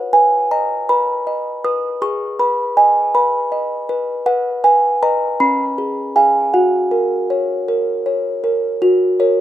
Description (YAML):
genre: classical, lullaby for music box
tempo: 53 BPM (dotted quarters)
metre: 6/8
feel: straight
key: F# major from 4.3 s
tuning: A4 = 435 Hz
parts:
  - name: music box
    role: solo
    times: 0.0-9.4 s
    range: C#4 to D#6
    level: -14 LUFS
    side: right 1 dB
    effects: none
room: little or no reverb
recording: recorded outdoors, with no room sound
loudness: -14 LUFS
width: side -12 dB against mid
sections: 0.0-8.8 A section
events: none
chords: 0.0 B; 2.0 G#m; 4.3 Bmaj7; 5.4 C#7; 6.5 F#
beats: 0.89 | 2.02 3.15 | 4.27 5.41 | 6.54 7.68 | 8.82